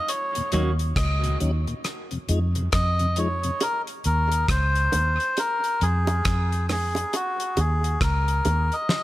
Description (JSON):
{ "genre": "dub reggae", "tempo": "68 BPM", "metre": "4/4", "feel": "swing 60% on 16ths", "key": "unclear", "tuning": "A4 = 442 Hz", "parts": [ { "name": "melodica", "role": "melody", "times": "0.0-9.0 s", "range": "Gb4 to Eb5", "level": "-26 LUFS", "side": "left 1 dB", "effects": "dub echo" }, { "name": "damped 70s drum kit", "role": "drums", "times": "0.1-9.0 s", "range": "hi-hat, kick drum, rim click, snare drum", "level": "-28 LUFS", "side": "equal", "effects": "none" }, { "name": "mellow tonewheel organ", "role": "accompaniment", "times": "0.4-3.5 s", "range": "Eb2 to Eb4", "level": "-32 LUFS", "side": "left 2 dB", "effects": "slow rotary speaker" }, { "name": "clean electric guitar", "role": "accompaniment", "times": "0.5-0.7 s", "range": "Gb3 to Gb4", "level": "-33 LUFS", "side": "right 2 dB", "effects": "dub echo" }, { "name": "vintage muted fingered electric bass", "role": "bass", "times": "0.5-8.7 s", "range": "Db2 to F2", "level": "-23 LUFS", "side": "equal", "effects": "none" }, { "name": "bongos", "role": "percussion", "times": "3.6-9.0 s", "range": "none", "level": "-32 LUFS", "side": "right 3 dB", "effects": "dub echo" } ], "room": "light reverb, small room ambience", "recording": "none", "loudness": "-21 LUFS", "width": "side -16 dB against mid", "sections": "0.0-9.0 A section", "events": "break 0.0-3.6", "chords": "0.1 Ebm7; 1.8 Fm7; 3.6 Cm7; 5.4 Fm; 7.1 Gb69", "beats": "| 0.09 0.97 1.85 2.73 | 3.61 4.49 5.37 6.25 | 7.13 8.01 8.89" }